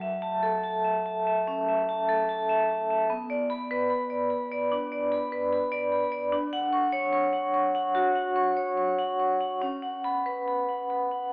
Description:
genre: classical, contemporary piece for solo vibraphone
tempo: 70-76 BPM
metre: 4/4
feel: rubato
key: F# minor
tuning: A4 = 440 Hz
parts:
  - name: vibraphone with medium hard mallets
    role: solo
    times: 0.0-11.3 s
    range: F#3 to C#6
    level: -28 LUFS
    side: equal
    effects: none
room: moderate recital hall reverb, RT60 1.5 s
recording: worn, warbling old tape, cassette tape, warbly pitch drift, telephone sound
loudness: -27 LUFS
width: mono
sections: 0.0-11.3 A section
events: none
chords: 0.0 F#m7; 3.1 Bm; 6.3 Dmaj7; 9.6 C#7sus4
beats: 0.65 1.49 2.30 | 3.11 3.91 4.72 5.53 | 6.33 7.14 7.94 8.76 | 9.60 10.46 11.32

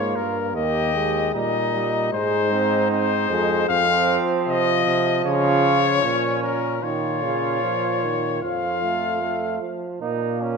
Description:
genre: classical, imitative canzona for brass ensemble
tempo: 76 BPM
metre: 4/4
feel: straight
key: Bb minor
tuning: A4 = 441 Hz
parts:
  - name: clear trumpet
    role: melody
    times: 0.0-9.6 s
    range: Bb4 to F5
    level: -23 LUFS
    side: left 7 dB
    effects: none
  - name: warm flugelhorn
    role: second line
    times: 0.0-10.6 s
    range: C4 to G4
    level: -27 LUFS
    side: right 6 dB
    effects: none
  - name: clear trombone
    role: accompaniment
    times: 0.0-10.6 s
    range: Db3 to C4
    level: -26 LUFS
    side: right 3 dB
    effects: none
  - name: clear bass trombone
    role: bass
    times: 0.0-10.6 s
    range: Eb2 to Db3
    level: -26 LUFS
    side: right 2 dB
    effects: none
room: wet recital hall reverb, RT60 1.8 s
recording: minimal, uncompressed stereo recording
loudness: -19 LUFS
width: side -5 dB against mid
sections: 0.0-10.0 A section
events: none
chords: 0.0 Bbm; 0.6 Eb; 2.1 Ab; 3.7 F5; 5.2 Bbm/Db; 6.8 Bbm; 8.4 F; 10.0 Bbm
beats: | 0.55 1.34 2.12 2.91 | 3.69 4.47 5.25 6.03 | 6.83 7.63 8.43 9.22 | 10.02

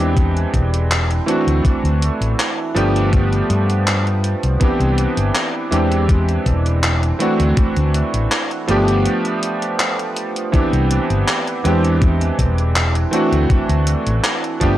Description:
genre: vaporwave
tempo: 81 BPM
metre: 4/4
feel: straight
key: unclear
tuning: A4 = 439 Hz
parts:
  - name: clear electric grand piano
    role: accompaniment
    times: 0.0-14.8 s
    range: E3 to G4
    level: -19 LUFS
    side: right 1 dB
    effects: analog chorus, vintage 12-bit sampler grit, analog delay
  - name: mellow fretless electric bass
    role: bass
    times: 0.0-14.8 s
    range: E1 to G2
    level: -17 LUFS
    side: equal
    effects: tube saturation
  - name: electronic kick drum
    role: drums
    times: 0.2-14.8 s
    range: none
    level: -17 LUFS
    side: equal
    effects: overdrive
  - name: gated 80s digital drum machine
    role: drums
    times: 0.2-14.8 s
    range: handclaps, hi-hat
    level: -22 LUFS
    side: left 1 dB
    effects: gated reverb, overdrive
room: light reverb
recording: dry, gritty hardware recording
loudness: -15 LUFS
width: side -13 dB against mid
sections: 0.0-10.5 A section; 10.5-14.8 B section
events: break 9.1-10.5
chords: 0.0 E7alt; 1.3 D7; 2.8 G7; 4.6 Cmaj9; 5.7 E7alt; 7.2 D7; 8.7 G7; 10.5 Cmaj9; 11.6 E7alt; 13.1 D7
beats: 0.17 0.91 | 1.65 2.39 3.13 3.87 | 4.61 5.35 6.09 6.83 | 7.58 8.31 9.06 9.80 | 10.54 11.28 12.02 12.76 | 13.50 14.24

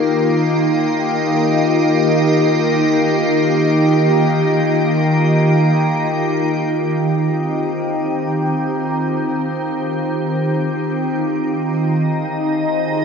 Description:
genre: ambient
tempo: free time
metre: none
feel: none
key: Eb major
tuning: A4 = 442 Hz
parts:
  - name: soft additive organ-like pad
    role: sustained chords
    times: 0.0-13.0 s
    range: Eb3 to C5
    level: -15 LUFS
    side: equal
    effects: ensemble chorus, built-in reverb, phaser, shimmer reverb
  - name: bowed-like drone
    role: drone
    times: 0.0-6.8 s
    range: Eb3 to Bb3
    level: -21 LUFS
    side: equal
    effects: built-in reverb, phaser
room: wet cathedral reverb, RT60 6.1 s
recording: nothing above 10.5 kHz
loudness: -15 LUFS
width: side -6 dB against mid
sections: 0.0-6.7 A section; 6.7-13.0 B section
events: none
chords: 0.0 Fsus2/Eb; 6.7 Eb69; 11.4 Ab/Eb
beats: free time

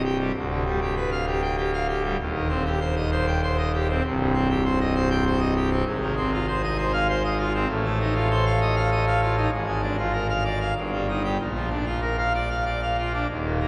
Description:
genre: classical, organ toccata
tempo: 97 BPM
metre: 3/4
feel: straight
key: C minor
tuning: A4 = 440 Hz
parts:
  - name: pipe organ, full organ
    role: solo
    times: 0.0-13.7 s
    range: C1 to G5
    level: -24 LUFS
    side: equal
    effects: none
room: wet cathedral reverb, RT60 5.5 s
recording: heard from further back in the room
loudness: -24 LUFS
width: mono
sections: 0.0-13.3 A section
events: none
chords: 0.3 G7/D; 2.2 Cm/Eb; 4.0 Cm; 5.9 Fm7/Ab; 7.7 F7/A; 9.5 Bb7/Ab; 10.8 Eb/G; 11.4 Bb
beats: | 0.34 0.96 1.57 | 2.19 2.81 3.43 | 4.04 4.65 5.26 | 5.87 6.48 7.09 | 7.70 8.31 8.92 | 9.53 10.14 10.76 | 11.40 12.03 12.67 | 13.30

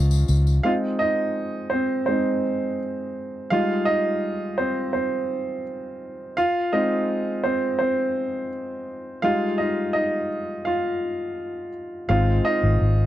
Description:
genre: piano-driven pop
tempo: 84 BPM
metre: 4/4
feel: straight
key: Ab major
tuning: A4 = 440 Hz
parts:
  - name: clear baby grand piano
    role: accompaniment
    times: 0.0-13.1 s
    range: F3 to F5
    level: -22 LUFS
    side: right 1 dB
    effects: none
  - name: vintage muted fingered electric bass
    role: bass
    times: 0.0-0.6, 12.1-13.1 s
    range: Ab1 to Db2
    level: -18 LUFS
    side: equal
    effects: none
  - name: tambourine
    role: percussion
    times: 0.1-0.6 s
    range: none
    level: -37 LUFS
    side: left 18 dB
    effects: none
room: light reverb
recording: dry, close 1970s-style studio recording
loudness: -21 LUFS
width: side -13 dB against mid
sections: 0.6-13.1 A section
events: grand piano solo 0.6-13.1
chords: 0.0 Dbadd9; 0.6 Ab; 3.5 Fm7; 6.4 Ab; 9.2 Fm7; 12.1 Ab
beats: | 0.65 1.36 2.08 2.79 | 3.51 4.22 4.94 5.66 | 6.37 7.09 7.80 8.52 | 9.23 9.95 10.66 11.38 | 12.09 12.81

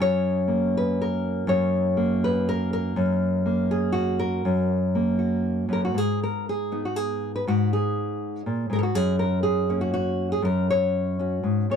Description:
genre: folk, solo fingerstyle acoustic guitar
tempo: 121 BPM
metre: 3/4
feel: rubato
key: unclear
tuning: A4 = 438 Hz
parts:
  - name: nylon-string guitar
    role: solo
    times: 0.0-11.8 s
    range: F#2 to C#5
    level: -22 LUFS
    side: equal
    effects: none
room: small room ambience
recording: dry, close 1970s-style studio recording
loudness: -22 LUFS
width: side -7 dB against mid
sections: 0.0-6.0 A section; 6.0-11.8 B section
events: none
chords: 0.0 F#; 6.0 G#m7; 9.0 F#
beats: | 0.01 0.52 1.01 | 1.50 1.99 2.48 | 2.97 3.46 3.96 | 4.45 4.95 5.46 | 5.97 6.48 6.98 | 7.49 7.99 8.47 | 8.96 9.45 9.95 | 10.44 10.94 11.45

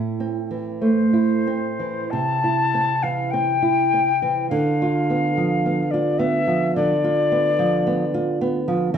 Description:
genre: romantic duo for flute and classical guitar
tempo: 44-55 BPM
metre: 4/4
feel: rubato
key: unclear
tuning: A4 = 445 Hz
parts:
  - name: nylon-string guitar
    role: accompaniment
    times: 0.0-9.0 s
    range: A2 to F4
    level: -21 LUFS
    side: right 3 dB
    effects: none
  - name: silver concert flute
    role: melody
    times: 0.8-8.4 s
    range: C5 to A5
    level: -21 LUFS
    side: left 4 dB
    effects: none
room: moderate large studio reverb, RT60 0.8 s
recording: band playing live in one room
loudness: -18 LUFS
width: side -8 dB against mid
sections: 0.0-9.0 A section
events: none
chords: 0.0 Am; 2.1 C6; 4.5 Bdim/D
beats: 0.81 2.12 3.34 | 4.51 5.65 6.77 7.88

